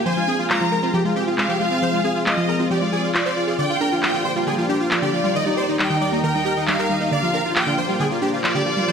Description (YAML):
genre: uplifting trance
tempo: 136 BPM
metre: 4/4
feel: straight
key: unclear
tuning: A4 = 436 Hz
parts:
  - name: dense compressed supersaw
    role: melody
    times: 0.0-8.9 s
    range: Eb4 to Eb5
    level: -23 LUFS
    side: equal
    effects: tape echo
  - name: rich chamber violin section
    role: second line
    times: 0.0-8.9 s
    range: D5 to Bb5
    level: -24 LUFS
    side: equal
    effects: digital delay
  - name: lush unison pad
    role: sustained chords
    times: 0.0-8.9 s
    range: Eb3 to Bb5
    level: -27 LUFS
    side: equal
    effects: chorus, phaser
  - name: wide unison pluck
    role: arpeggios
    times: 0.1-8.9 s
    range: D3 to C5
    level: -24 LUFS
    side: equal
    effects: digital delay
  - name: electronic handclaps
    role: drums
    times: 0.5-8.5 s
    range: none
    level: -23 LUFS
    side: equal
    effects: low-pass filter on snare
room: wet digital room reverb, RT60 1.1 s, digital ambience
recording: none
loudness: -18 LUFS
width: side -6 dB against mid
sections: 0.0-8.9 A section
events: filter sweep on synth arpeggio sound 0.0-8.9; filter sweep on analog synth pad 0.0-8.9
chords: 0.1 Fm; 3.6 Bb6; 5.4 Eb; 7.1 Bb6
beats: | 0.06 0.50 0.94 1.38 | 1.82 2.26 2.70 3.15 | 3.59 4.03 4.47 4.91 | 5.35 5.79 6.23 6.67 | 7.12 7.56 8.00 8.44 | 8.88